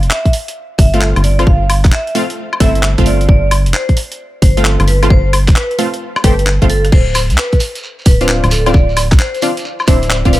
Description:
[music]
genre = UK garage, two-step garage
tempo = 132 BPM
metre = 4/4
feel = swing 66% on 16ths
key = unclear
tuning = A4 = 437 Hz
[part]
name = rubbery square bass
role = bass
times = 0.0-10.4 s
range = D1 to C2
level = -13 LUFS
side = equal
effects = sidechain pumping
[part]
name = breakbeat sampler-style drum kit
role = drums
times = 0.0-10.4 s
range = crash cymbal, handclaps, hi-hat, rim click, woodblock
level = -18 LUFS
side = left 1 dB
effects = none
[part]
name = vibraphone with medium hard mallets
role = melody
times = 0.1-10.4 s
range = A4 to F5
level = -20 LUFS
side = equal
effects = dub echo
[part]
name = electronic kick drum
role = drums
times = 0.3-10.3 s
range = none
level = -10 LUFS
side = equal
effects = none
[part]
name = punchy chord stab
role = stabs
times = 0.9-10.4 s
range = A3 to G4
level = -18 LUFS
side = equal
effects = chorus
[part]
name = shekere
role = percussion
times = 6.9-10.4 s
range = none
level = -25 LUFS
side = right 2 dB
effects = none
[sound]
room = little or no reverb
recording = none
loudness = -10 LUFS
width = side -16 dB against mid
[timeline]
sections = 0.0-10.4 A section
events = none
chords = 0.0 G9sus4; 6.9 Dm7

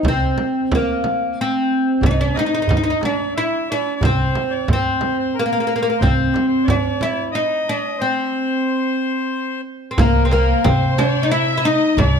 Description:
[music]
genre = Arabic maqam ensemble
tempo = 90 BPM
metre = 3/4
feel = straight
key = C maqam saba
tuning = A4 = 440 Hz
[part]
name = oud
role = melody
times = 0.0-12.2 s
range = Bb3 to E4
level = -18 LUFS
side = equal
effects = none
[part]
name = upright bass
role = bass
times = 0.0-6.3, 10.0-12.2 s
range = C2 to C3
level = -20 LUFS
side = equal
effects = none
[part]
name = frame drum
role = percussion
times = 0.0-12.1 s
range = none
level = -22 LUFS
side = right 2 dB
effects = none
[part]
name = accordion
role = second line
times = 2.0-12.2 s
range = Bb4 to E5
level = -26 LUFS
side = left 3 dB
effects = none
[part]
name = darbuka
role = percussion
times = 2.0-12.1 s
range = none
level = -24 LUFS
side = right 2 dB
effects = none
[part]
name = dark symphonic violin section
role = second line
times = 10.0-12.2 s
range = Bb4 to E5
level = -25 LUFS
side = left 3 dB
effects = none
[sound]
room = light reverb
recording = close, detailed microphones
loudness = -16 LUFS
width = side -6 dB against mid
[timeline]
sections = 0.0-10.0 A section; 10.0-12.2 B section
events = break 8.0-10.0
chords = none

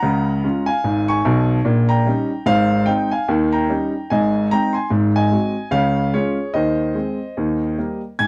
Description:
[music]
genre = jazz, stride piano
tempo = 148 BPM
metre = 4/4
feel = swing 59% on 8ths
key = Ab major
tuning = A4 = 441 Hz
[part]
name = warm grand piano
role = solo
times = 0.0-8.3 s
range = Ab1 to Ab6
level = -19 LUFS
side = equal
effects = none
[sound]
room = light reverb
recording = dry, close 1970s-style studio recording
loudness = -19 LUFS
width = mono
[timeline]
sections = 0.0-8.2 A section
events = none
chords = 0.0 Db; 1.7 Eb7/Bb; 2.5 Ab; 3.3 Eb7; 4.1 Ab; 4.9 Ab7; 5.7 Db; 6.5 Ab/Eb; 7.4 Eb

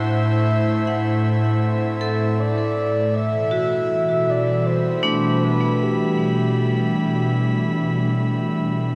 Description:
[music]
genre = ambient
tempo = 79 BPM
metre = 4/4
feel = straight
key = unclear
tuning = A4 = 436 Hz
[part]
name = breathy flute-like synth lead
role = melody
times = 0.0-8.5 s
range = G4 to F#5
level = -28 LUFS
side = equal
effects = lush chorus, tape echo
[part]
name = airy breathy pad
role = sustained chords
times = 0.0-8.9 s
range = A2 to B5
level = -23 LUFS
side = equal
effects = chorus
[part]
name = vibraphone with hard mallets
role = arpeggios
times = 0.0-8.9 s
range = A3 to F#5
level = -27 LUFS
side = equal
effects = tape echo
[part]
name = organ-like drone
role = drone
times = 0.0-8.9 s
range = A3 to E4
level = -39 LUFS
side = equal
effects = none
[sound]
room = wet concert hall reverb, RT60 2.2 s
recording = none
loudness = -20 LUFS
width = mono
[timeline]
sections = 0.0-8.9 A section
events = none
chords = 0.0 Am; 3.1 Em

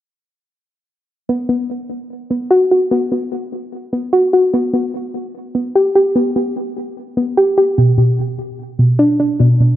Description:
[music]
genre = hip hop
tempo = 148 BPM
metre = 4/4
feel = half-time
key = B minor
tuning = A4 = 440 Hz
[part]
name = soft round pluck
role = arpeggios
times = 1.3-9.8 s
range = B2 to G4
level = -14 LUFS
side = equal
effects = chorus, digital delay
[sound]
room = moderate recital hall reverb, RT60 1.7 s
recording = none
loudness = -13 LUFS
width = side -12 dB against mid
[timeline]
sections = 1.3-9.8 A section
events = none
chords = 1.3 B5; 4.5 G/B; 7.8 Bm

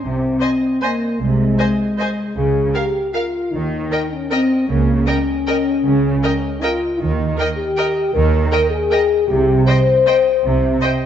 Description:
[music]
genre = classical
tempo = 155 BPM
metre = 3/4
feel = uneven beats, rubato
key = Eb major from 7.0 s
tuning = A4 = 440 Hz
[part]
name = dark French horn section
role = sustained chords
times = 0.0-11.0 s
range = Ab3 to C5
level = -18 LUFS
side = left 3 dB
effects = none
[part]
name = warm chamber cello section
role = bass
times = 0.0-10.8 s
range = C3 to Eb3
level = -22 LUFS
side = right 3 dB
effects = none
[part]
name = warm chamber double bass section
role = bass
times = 0.0-10.8 s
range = C2 to Eb2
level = -21 LUFS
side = right 3 dB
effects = none
[part]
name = clear chamber violin section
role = melody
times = 0.4-10.9 s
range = F5 to Ab5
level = -30 LUFS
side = left 3 dB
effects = none
[part]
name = rich chamber violin section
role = second line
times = 0.4-10.9 s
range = Eb5 to F5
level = -27 LUFS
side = left 1 dB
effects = none
[part]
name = rich chamber viola section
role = accompaniment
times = 0.4-10.9 s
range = Bb4 to C5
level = -26 LUFS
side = right 2 dB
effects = none
[sound]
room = moderate scoring stage reverb, RT60 1.6 s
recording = dark, warm production, nothing above 7.8 kHz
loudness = -15 LUFS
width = side -9 dB against mid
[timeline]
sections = 0.0-11.1 A section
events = none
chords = 0.0 Ab/C; 2.4 Bbm7/Db; 3.5 Eb5; 4.7 Eb7(no3)/Db (rootless); 7.0 Eb; 9.3 C5

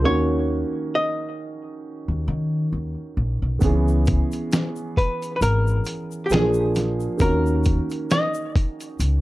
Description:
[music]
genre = lo-fi hip hop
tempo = 67 BPM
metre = 4/4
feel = swing 56% on 16ths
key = unclear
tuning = A4 = 440 Hz
[part]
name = archtop guitar, miked and amplified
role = melody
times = 0.0-9.0 s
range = G4 to D#5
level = -25 LUFS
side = left 1 dB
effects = low-pass filter, analog delay, plate reverb
[part]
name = dark upright piano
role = accompaniment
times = 0.0-9.2 s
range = D#3 to G#4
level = -26 LUFS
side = right 2 dB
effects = cassette tape, low-pass filter, plate reverb
[part]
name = upright bass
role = bass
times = 0.0-9.2 s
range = G#1 to D#3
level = -22 LUFS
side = equal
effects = none
[part]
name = dusty soul sampler-style drum kit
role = drums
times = 3.6-9.2 s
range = hi-hat, kick drum, snare drum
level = -22 LUFS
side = equal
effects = overdrive
[part]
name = egg shaker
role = percussion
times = 3.6-9.2 s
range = none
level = -44 LUFS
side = left 8 dB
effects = none
[sound]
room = moderate small room reverb, RT60 0.5 s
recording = dark, warm production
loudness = -20 LUFS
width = side -17 dB against mid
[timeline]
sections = 0.0-9.2 A section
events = none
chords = 0.0 D#m7; 3.6 C#m7; 6.3 A#7; 7.2 D#m7

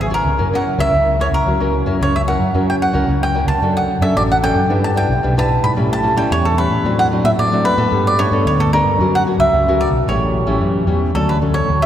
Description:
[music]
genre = samba and choro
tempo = 112 BPM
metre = 4/4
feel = straight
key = unclear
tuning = A4 = 444 Hz
[part]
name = cavaquinho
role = melody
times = 0.0-11.9 s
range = G#4 to B5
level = -17 LUFS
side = right 1 dB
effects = none
[part]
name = nylon-string guitar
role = accompaniment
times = 0.0-11.9 s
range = G#2 to B4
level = -20 LUFS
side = left 2 dB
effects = none
[part]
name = mellow fretless electric bass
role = bass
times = 0.0-11.9 s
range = G#1 to A2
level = -18 LUFS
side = equal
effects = none
[sound]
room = wet cathedral reverb, RT60 4.6 s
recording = recorded in a church or concert hall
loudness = -13 LUFS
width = side -10 dB against mid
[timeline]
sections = 0.0-11.1 A section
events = none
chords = 0.4 F#7; 3.6 Dmaj7/F#; 4.7 Em7; 5.8 A7; 6.8 D7/A; 7.9 Gadd9; 9.0 F#; 10.1 A7; 11.1 Dmaj7

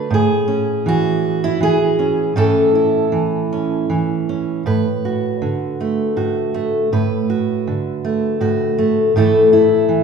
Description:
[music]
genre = folk, solo fingerstyle acoustic guitar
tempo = 80 BPM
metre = 3/4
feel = rubato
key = unclear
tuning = A4 = 438 Hz
[part]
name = fingerpicked steel-string acoustic guitar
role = solo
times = 0.0-10.0 s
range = A2 to B4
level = -15 LUFS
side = right 1 dB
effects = none
[sound]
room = wet large studio reverb, RT60 1.2 s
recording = band playing live in one room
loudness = -15 LUFS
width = side -6 dB against mid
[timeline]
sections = 0.0-4.7 A section; 4.7-10.0 B section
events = none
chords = 0.1 A; 4.7 Bm7/A; 9.1 Esus4/A

